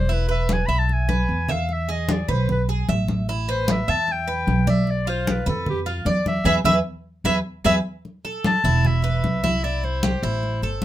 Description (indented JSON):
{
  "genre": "latin, Cuban son and guajira",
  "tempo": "151 BPM",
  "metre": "4/4",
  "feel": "straight",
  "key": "unclear",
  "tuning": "A4 = 441 Hz",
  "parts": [
    { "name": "mellow clarinet", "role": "melody", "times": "0.0-10.8 s", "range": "G4 to B5", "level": "-25 LUFS", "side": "left 2 dB", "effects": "none" },
    { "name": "Cuban tres", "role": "arpeggios", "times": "0.0-10.8 s", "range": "E4 to E5", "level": "-26 LUFS", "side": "right 4 dB", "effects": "none" },
    { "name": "upright bass", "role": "bass", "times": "0.0-10.8 s", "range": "E1 to F2", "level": "-23 LUFS", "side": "equal", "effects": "none" },
    { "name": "congas", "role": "percussion", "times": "0.1-10.8 s", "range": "none", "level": "-25 LUFS", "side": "left 1 dB", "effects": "none" }
  ],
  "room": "light reverb",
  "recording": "minimal, uncompressed stereo recording",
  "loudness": "-19 LUFS",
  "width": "side -13 dB against mid",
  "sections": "0.0-8.0 A section; 8.0-10.8 B section",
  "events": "clarinet solo 0.0-8.0; drum fill 1.1-1.7; band accent 6.5-8.0",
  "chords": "0.1 E; 3.3 Asus2; 4.9 Bdim; 6.5 E; 8.0 A5; 8.8 E5; 9.6 C"
}